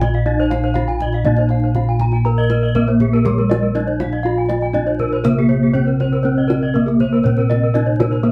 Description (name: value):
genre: Balinese gamelan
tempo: 120 BPM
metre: 4/4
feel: straight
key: Bb slendro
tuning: A4 = 440 Hz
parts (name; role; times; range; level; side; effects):
- gamelan-type bronze metallophone; melody; 0.0-8.3 s; Ab3-45c to Bb4; -22 LUFS; equal; none
- gamelan-type bronze metallophone; arpeggios; 0.0-8.2 s; Ab4-45c to Bb5; -27 LUFS; equal; none
- gamelan-type bossed gongs; bass; 0.0-8.3 s; Bb1 to Bb4; -20 LUFS; equal; none
- kendang; percussion; 0.0-8.2 s; none; -27 LUFS; equal; none
- gamelan-type bronze metallophone; arpeggios; 0.3-8.3 s; Ab4-45c to Bb5; -26 LUFS; equal; none
room: wet studio ambience, RT60 0.5 s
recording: heard from further back in the room, vinyl crackle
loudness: -17 LUFS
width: mono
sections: 0.0-8.3 A section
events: none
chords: none